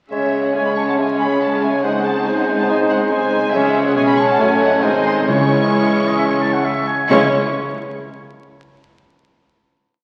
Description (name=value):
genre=quick classical-period movement for symphony orchestra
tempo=129-143 BPM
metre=4/4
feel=straight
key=C# minor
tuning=A4 = 441 Hz
part: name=rich studio violin section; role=melody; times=0.1-7.4 s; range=E5 to C#6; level=-28 LUFS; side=equal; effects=none
part: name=clear oboe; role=second line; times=0.1-7.3 s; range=B#4 to A5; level=-24 LUFS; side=equal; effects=none
part: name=mellow clarinet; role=second line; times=0.1-7.3 s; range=C#4 to E4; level=-26 LUFS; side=equal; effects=none
part: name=mellow hollow large flute ensemble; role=second line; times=0.1-7.4 s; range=C#5 to A5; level=-27 LUFS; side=equal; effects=none
part: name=warm chamber violin section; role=second line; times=0.1-7.4 s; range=D#4 to D#5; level=-29 LUFS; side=equal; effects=none
part: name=clear studio viola section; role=accompaniment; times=0.1-7.4 s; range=G#3 to D#4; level=-27 LUFS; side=equal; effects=none
part: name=warm bassoon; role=accompaniment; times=0.1-7.3 s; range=G#3 to A3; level=-24 LUFS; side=equal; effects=none
part: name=mellow French horn section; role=sustained chords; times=0.1-7.3 s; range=D#3 to C#4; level=-28 LUFS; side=equal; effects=none
part: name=rich chamber cello section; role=bass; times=0.1-7.4 s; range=G#2 to C#3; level=-28 LUFS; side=equal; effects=none
part: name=rich chamber double bass section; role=bass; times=0.1-7.4 s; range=G#1 to C#2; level=-34 LUFS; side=equal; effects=none
part: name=timpani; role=percussion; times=3.5-7.3 s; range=C#3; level=-29 LUFS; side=equal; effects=none
room=wet scoring stage reverb, RT60 1.9 s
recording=very old 78 rpm record, vinyl crackle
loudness=-16 LUFS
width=mono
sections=0.1-7.1 A section; 7.1-8.9 final chord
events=none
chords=0.1 C#5; 1.8 G#/C#; 3.5 C#5; 4.4 F#m/A; 4.8 G#; 5.3 C#m